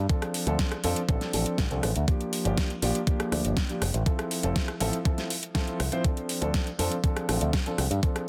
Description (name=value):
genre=nu-disco, nu disco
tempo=121 BPM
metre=4/4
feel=straight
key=D minor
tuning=A4 = 440 Hz
part: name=picked electric bass with an envelope filter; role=bass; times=0.0-8.0 s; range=F1 to G2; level=-30 LUFS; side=equal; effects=none
part: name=dark grand piano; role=accompaniment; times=0.1-8.3 s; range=F3 to C5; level=-33 LUFS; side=equal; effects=dub echo
part: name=electronic kick drum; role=drums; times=0.1-8.1 s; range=none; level=-28 LUFS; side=equal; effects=overdrive
part: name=pop drum kit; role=drums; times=0.1-8.3 s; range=hi-hat, rim click, snare drum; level=-34 LUFS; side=equal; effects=overdrive
room=light reverb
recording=dense, heavily limited modern master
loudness=-27 LUFS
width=mono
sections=0.0-8.3 A section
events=none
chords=0.0 Dm7; 2.1 Gm7; 3.8 Fmaj7; 6.0 Dm7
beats=| 0.10 0.59 1.09 1.58 | 2.08 2.58 3.07 3.57 | 4.06 4.56 5.06 5.55 | 6.05 6.54 7.04 7.54 | 8.03